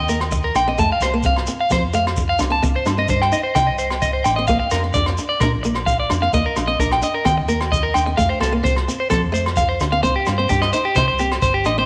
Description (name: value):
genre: highlife guitar band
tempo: 130 BPM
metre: 4/4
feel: straight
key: unclear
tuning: A4 = 440 Hz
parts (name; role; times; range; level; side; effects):
- electric guitar at the edge of break-up; arpeggios; 0.0-11.9 s; G4 to A5; -22 LUFS; equal; tape echo
- hollow-body short-scale fingered electric bass; bass; 0.0-11.9 s; G1 to F3; -25 LUFS; equal; none
- fingerpicked old ladder-braced acoustic guitar; accompaniment; 0.1-11.8 s; A3 to Eb4; -28 LUFS; equal; none
- jazz brush drum kit; drums; 0.1-11.8 s; hi-hat, kick drum, rim click; -28 LUFS; equal; none
- shekere; percussion; 0.1-11.8 s; none; -33 LUFS; equal; none
- agogo bells; percussion; 0.2-11.8 s; none; -31 LUFS; equal; none
room: moderate echo chamber reverb, RT60 1.8 s, small room ambience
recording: none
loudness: -19 LUFS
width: mono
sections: 0.0-11.9 A section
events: none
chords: 0.0 Eb; 0.8 F; 2.6 Cm; 4.5 Bb; 6.3 Eb; 8.2 F; 10.0 Cm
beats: 0.32 | 0.78 1.25 1.71 2.17 | 2.63 3.10 3.56 4.02 | 4.49 4.95 5.41 5.87 | 6.33 6.80 7.26 7.72 | 8.18 8.65 9.11 9.57 | 10.03 10.49 10.96 11.42